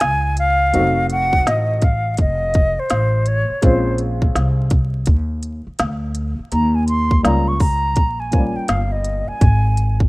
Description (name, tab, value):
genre	hip hop, jazz-hop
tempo	83 BPM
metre	4/4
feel	swing 64% on 16ths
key	unclear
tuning	A4 = 440 Hz
part	mellow silver concert flute	melody	0.0-10.0 s	C5 to Db6	-20 LUFS	equal	none
part	upright bass	bass	0.0-10.1 s	F1 to Eb2	-19 LUFS	equal	none
part	organic electronic drum kit	drums	0.0-10.1 s	hi-hat, kick drum, snare drum	-17 LUFS	equal	none
part	dark upright piano	accompaniment	0.7-9.4 s	F3 to Gb4	-22 LUFS	left 1 dB	none
room	small room ambience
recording	rough home demo mix, vinyl crackle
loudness	-15 LUFS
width	side -22 dB against mid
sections	0.0-10.1 A section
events	flute solo 0.0-10.1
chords	0.0 Fm; 0.7 F7b9; 3.6 Bbm9; 6.5 Eb7; 9.4 N.C.